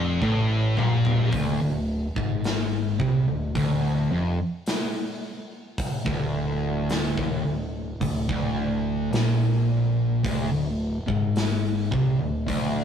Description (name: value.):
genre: stoner and doom metal.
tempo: 54 BPM.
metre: 4/4.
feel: straight.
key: D minor.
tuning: A4 = 440 Hz.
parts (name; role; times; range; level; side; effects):
fuzz guitar; riff; 0.0-12.8 s; D2 to C3; -23 LUFS; equal; distortion.
scooped high-gain guitar; riff; 0.0-1.3 s; F2 to Bb2; -28 LUFS; left 1 dB; distortion.
growling picked electric bass; bass; 0.0-12.8 s; D1 to C2; -33 LUFS; equal; overdrive.
big rock drum kit; drums; 0.2-12.7 s; hi-hat, kick drum, snare drum, toms; -30 LUFS; equal; none.
room: light reverb.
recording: rough rehearsal-room recording.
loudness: -22 LUFS.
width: side -8 dB against mid.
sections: 0.0-1.3 A section; 1.3-12.8 B section.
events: drum fill 0.2-1.3.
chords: 0.0 Dm (rootless); 1.3 N.C..